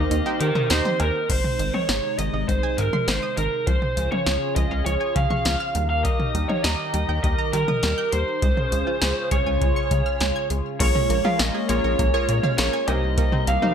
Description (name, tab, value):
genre	synth-pop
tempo	101 BPM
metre	4/4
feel	straight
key	Eb mixolydian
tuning	A4 = 436 Hz
part	lead guitar through a small cranked amp	melody	0.0-13.7 s	Bb4 to F5	-25 LUFS	right 2 dB	overdrive, ping-pong delay
part	warm analog keys	accompaniment	0.0-1.3, 10.8-13.7 s	Eb4 to Eb5	-29 LUFS	equal	chorus
part	phased analog pad	sustained chords	0.0-13.7 s	C3 to Bb4	-30 LUFS	left 1 dB	phaser, chorus
part	analog pluck	arpeggios	0.0-13.7 s	Eb3 to Ab6	-31 LUFS	right 3 dB	chorus, ping-pong delay
part	rubbery square bass	bass	0.0-13.6 s	Ab1 to Eb3	-25 LUFS	left 1 dB	none
part	electro analog drum machine	drums	0.1-13.7 s	cowbell, crash cymbal, hi-hat, kick drum, snare drum, toms	-24 LUFS	left 1 dB	none
room	light reverb, digital ambience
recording	bright 1980s-style digital production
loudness	-20 LUFS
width	side -8 dB against mid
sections	0.0-1.3 A section; 1.3-10.8 B section; 10.8-13.7 A section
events	synth keys fill 0.4-1.3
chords	0.0 Eb6; 1.3 Ab; 3.7 Db; 5.8 Eb; 8.4 Db; 10.8 Bbm7; 12.9 Cm7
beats	0.11 0.70 | 1.30 1.89 2.48 3.08 | 3.67 4.27 4.86 5.46 | 6.05 6.64 7.24 7.83 | 8.43 9.02 9.61 10.21 | 10.80 11.40 11.99 12.58 | 13.18